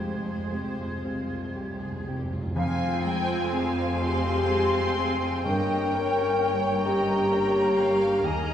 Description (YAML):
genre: cinematic, emotional film score for orchestra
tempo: 38-44 BPM (dotted quarters)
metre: 6/8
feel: rubato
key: F minor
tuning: A4 = 440 Hz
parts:
  - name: muted studio violin section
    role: melody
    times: 0.0-8.5 s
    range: C5 to C6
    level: -35 LUFS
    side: left 2 dB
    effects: none
  - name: muted symphonic violin section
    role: second line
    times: 0.0-8.5 s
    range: C4 to Ab5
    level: -38 LUFS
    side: left 1 dB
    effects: none
  - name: small flute group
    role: second line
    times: 0.0-8.5 s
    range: F5 to Ab6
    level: -33 LUFS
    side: equal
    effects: none
  - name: warm clarinet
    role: second line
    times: 0.0-8.5 s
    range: Ab3 to Ab5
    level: -37 LUFS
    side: equal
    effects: none
  - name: dark baby grand piano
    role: accompaniment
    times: 0.0-8.5 s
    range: Eb2 to F5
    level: -32 LUFS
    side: left 1 dB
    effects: none
  - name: muted symphonic viola section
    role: accompaniment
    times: 0.0-8.5 s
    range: Ab3 to C4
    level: -38 LUFS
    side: right 3 dB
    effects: none
  - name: dark French horn section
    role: sustained chords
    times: 0.0-8.5 s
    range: Ab3 to Bb4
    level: -27 LUFS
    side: left 2 dB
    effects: none
  - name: concert harp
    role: arpeggios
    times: 0.0-8.5 s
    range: G2 to Bb5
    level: -37 LUFS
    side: left 5 dB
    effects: none
  - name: muted symphonic cello section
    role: bass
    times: 0.0-8.5 s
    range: C2 to G2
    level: -34 LUFS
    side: right 2 dB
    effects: none
  - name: muted symphonic double bass section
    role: bass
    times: 0.0-8.5 s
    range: F1 to Eb2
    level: -36 LUFS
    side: right 2 dB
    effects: none
  - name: timpani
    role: percussion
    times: 0.0-2.5 s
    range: F2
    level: -36 LUFS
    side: right 1 dB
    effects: none
  - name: mellow cor anglais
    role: second line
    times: 2.6-8.5 s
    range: Bb4 to Db5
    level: -36 LUFS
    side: right 1 dB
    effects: none
room: wet recital hall reverb, RT60 1.5 s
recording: recorded in a church or concert hall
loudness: -23 LUFS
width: side -10 dB against mid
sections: 0.0-2.6 A section; 2.6-8.5 B section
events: timpani fill 0.0-2.6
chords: 0.0 Fmadd9; 5.4 Gdim